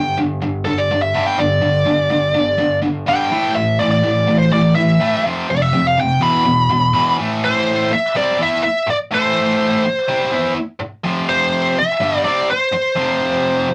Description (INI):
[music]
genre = rock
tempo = 124 BPM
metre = 4/4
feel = straight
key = A minor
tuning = A4 = 440 Hz
[part]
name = bluesy overdriven lead guitar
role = melody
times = 0.0-13.7 s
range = A4 to B5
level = -19 LUFS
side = equal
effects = distortion
[part]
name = tight distorted guitar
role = riff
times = 0.0-13.7 s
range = E2 to E4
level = -20 LUFS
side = equal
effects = distortion
[sound]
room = wet booth ambience, RT60 0.3 s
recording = rough rehearsal-room recording, tube saturation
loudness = -17 LUFS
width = mono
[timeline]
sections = 0.0-7.2 A section; 7.2-13.7 B section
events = lead electric guitar solo 0.0-7.2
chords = 0.0 G5; 3.3 A5; 5.3 F5; 6.2 E5; 7.2 Am; 11.0 F5